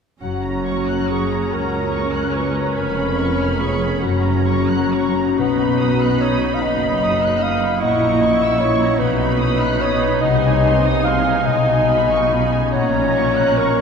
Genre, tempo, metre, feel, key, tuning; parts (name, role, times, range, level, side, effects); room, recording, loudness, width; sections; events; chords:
classical, slow romantic movement for symphony orchestra; 43-51 BPM (dotted quarters); 6/8; rubato; F# major; A4 = 440 Hz
muted symphonic violin section; melody; 0.2-13.8 s; G#5 to C#6; -29 LUFS; left 2 dB
mellow clarinet; second line; 0.2-13.8 s; F#4 to E#5; -20 LUFS; left 1 dB
muted symphonic violin section; second line; 0.2-13.8 s; E#5 to F#6; -28 LUFS; left 1 dB
muted symphonic viola section; accompaniment; 0.2-13.8 s; C#4 to E4; -24 LUFS; right 1 dB
concert harp; arpeggios; 0.2-13.8 s; E#2 to B4; -22 LUFS; left 8 dB
muted symphonic cello section; bass; 0.2-13.8 s; C#2 to B#2; -24 LUFS; right 4 dB
muted symphonic double bass section; bass; 0.2-13.8 s; E#1 to C#2; -25 LUFS; right 5 dB
wet cathedral reverb, RT60 7.5 s; -15 LUFS; side -6 dB against mid
0.2-13.8 A section
0.2 F#; 2.8 C#7/E#; 4.0 F#; 5.4 B; 7.8 F#7/A#; 9.0 B; 10.2 G#7/B#; 11.5 C#7/B; 12.7 F#/A#